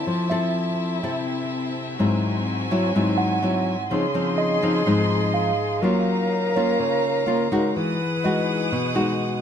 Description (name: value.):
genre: bossa nova.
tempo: 125 BPM.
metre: 4/4.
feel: straight.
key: Db major from 3.9 s.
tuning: A4 = 440 Hz.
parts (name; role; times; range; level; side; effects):
mellow tine electric piano; accompaniment; 0.0-9.4 s; Db5 to Gb5; -29 LUFS; right 5 dB; medium tremolo.
nylon-string guitar; accompaniment; 0.0-9.4 s; Ab2 to A4; -22 LUFS; left 1 dB; none.
rich studio violin section; sustained chords; 0.0-9.4 s; C4 to D#6; -29 LUFS; equal; none.
hollow concert flute; second line; 3.9-9.4 s; Ab4 to B4; -27 LUFS; left 4 dB; none.
room: light reverb.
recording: dark, warm production.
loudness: -20 LUFS.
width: side -8 dB against mid.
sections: 0.0-3.9 A section; 3.9-9.4 B section.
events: none.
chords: 0.1 Fmaj7; 2.0 Abaug7; 3.9 Dbmaj9; 5.8 Gbmaj7; 7.8 Emaj9.